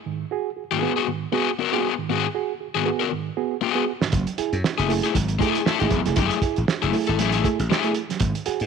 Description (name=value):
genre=funk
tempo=118 BPM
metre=4/4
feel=swing 56% on 16ths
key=unclear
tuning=A4 = 440 Hz
part: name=reed electric piano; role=stabs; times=0.1-8.6 s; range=G#2 to G#4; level=-26 LUFS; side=right 11 dB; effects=none
part: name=overdriven electric guitar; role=accompaniment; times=0.7-7.9 s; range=A3 to A#4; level=-24 LUFS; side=left 12 dB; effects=harmonic tremolo
part: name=cloth-damped thuddy drum kit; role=drums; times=4.0-8.7 s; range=hi-hat, kick drum, snare drum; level=-25 LUFS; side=right 4 dB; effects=none
part: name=slap bass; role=bass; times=4.1-8.7 s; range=E1 to G#2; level=-24 LUFS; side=left 1 dB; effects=none
room=light reverb, studio ambience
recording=1960s-style stereo with parts hard left and right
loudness=-20 LUFS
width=side -6 dB against mid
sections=0.0-8.7 A section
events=drum fill 3.6-4.1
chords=0.1 G#m7; 4.1 F#m9